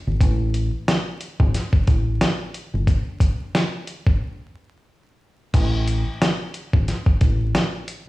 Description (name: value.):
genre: hip hop, boom-bap hip-hop.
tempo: 90 BPM.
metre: 4/4.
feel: swing 57% on 16ths.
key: unclear.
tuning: A4 = 441 Hz.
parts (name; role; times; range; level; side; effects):
deep dub fingered electric bass; bass; 0.1-7.5 s; G1 to A1; -20 LUFS; equal; none.
dusty soul sampler-style drum kit; drums; 0.2-8.1 s; crash cymbal, hi-hat, kick drum, snare drum; -19 LUFS; equal; vintage 12-bit sampler grit.
room: light reverb.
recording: played on a big sound system in a bare room, stone room reverb, vinyl crackle, studio reverb.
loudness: -19 LUFS.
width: side -18 dB against mid.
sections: 0.0-5.5 A section; 5.5-8.1 B section.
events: break 2.9-5.5.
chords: none.